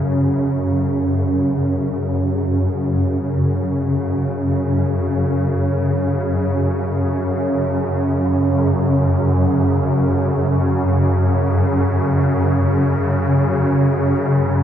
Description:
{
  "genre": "ambient",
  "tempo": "free time",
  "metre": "none",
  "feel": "none",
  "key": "unclear",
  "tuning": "A4 = 440 Hz",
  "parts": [
    { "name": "swarming drone", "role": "solo", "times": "0.0-14.6 s", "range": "F#2 to C#3", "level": "-16 LUFS", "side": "equal", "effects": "built-in reverb" }
  ],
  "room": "wet cathedral reverb, RT60 5.0 s",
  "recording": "cassette tape",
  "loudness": "-16 LUFS",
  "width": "side -10 dB against mid",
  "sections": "0.0-3.4 A section; 3.4-14.6 B section",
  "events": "none",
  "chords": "0.0 F#5"
}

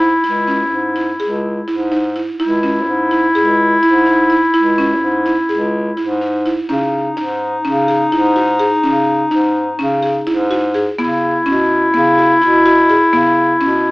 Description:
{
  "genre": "contemporary instrumental, chamber music in an uneven meter",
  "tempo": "251 BPM (eighths)",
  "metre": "9/8",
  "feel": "straight",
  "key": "C# minor",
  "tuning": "A4 = 440 Hz",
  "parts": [
    { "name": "mellow clarinet", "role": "second line", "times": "0.0-13.9 s", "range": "D#4 to E4", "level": "-14 LUFS", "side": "left 1 dB", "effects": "none" },
    { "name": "buzzing marimba with soft mallets", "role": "arpeggios", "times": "0.0-13.9 s", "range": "B3 to G#4", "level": "-19 LUFS", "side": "right 1 dB", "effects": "none" },
    { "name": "mellow bass clarinet", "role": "bass", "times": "0.0-13.9 s", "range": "C#2 to C#3", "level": "-19 LUFS", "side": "equal", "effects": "none" }
  ],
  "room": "light reverb",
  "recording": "small speaker sound",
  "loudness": "-12 LUFS",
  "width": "side -22 dB against mid",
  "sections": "0.0-6.7 A section; 6.7-13.9 B section",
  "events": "none",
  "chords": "0.0 C#m; 6.7 C#sus2; 11.0 E5"
}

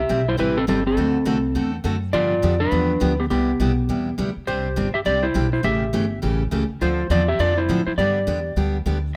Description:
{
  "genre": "country, western swing",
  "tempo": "205 BPM",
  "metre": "4/4",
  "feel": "swing 61% on 8ths",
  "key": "C major",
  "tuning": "A4 = 441 Hz",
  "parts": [
    { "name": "clean lap steel guitar", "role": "melody", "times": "0.0-8.6 s", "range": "B3 to E5", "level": "-24 LUFS", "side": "equal", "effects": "none" },
    { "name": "upright bass", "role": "bass", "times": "0.0-9.1 s", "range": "G1 to A2", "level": "-26 LUFS", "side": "equal", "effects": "none" },
    { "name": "picked steel-string acoustic guitar", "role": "accompaniment", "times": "0.1-9.0 s", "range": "C3 to A4", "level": "-27 LUFS", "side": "equal", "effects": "none" }
  ],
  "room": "moderate club reverb, RT60 0.9 s",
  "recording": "none",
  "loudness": "-21 LUFS",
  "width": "mono",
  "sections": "0.0-9.2 A section",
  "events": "none",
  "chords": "0.0 C; 1.0 D7; 2.1 G7; 3.3 Cmaj7; 4.5 Csus2; 5.6 A7; 6.8 Dm7; 8.0 G"
}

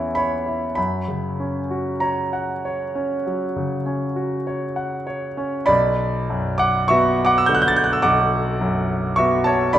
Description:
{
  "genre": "classical, romantic nocturne for solo piano",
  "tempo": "47-54 BPM",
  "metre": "4/4",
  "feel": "rubato",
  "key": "unclear",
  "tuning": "A4 = 442 Hz",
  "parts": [
    { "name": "clear concert grand piano", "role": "solo", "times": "0.0-9.8 s", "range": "B1 to A6", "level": "-18 LUFS", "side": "equal", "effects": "none" }
  ],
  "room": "moderate recital hall reverb, RT60 1.3 s",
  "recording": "dark, warm production",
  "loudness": "-18 LUFS",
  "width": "side -11 dB against mid",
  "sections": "0.0-5.7 A section; 5.7-9.8 B section",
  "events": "none",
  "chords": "0.0 Em6; 0.8 F#; 5.7 Bm"
}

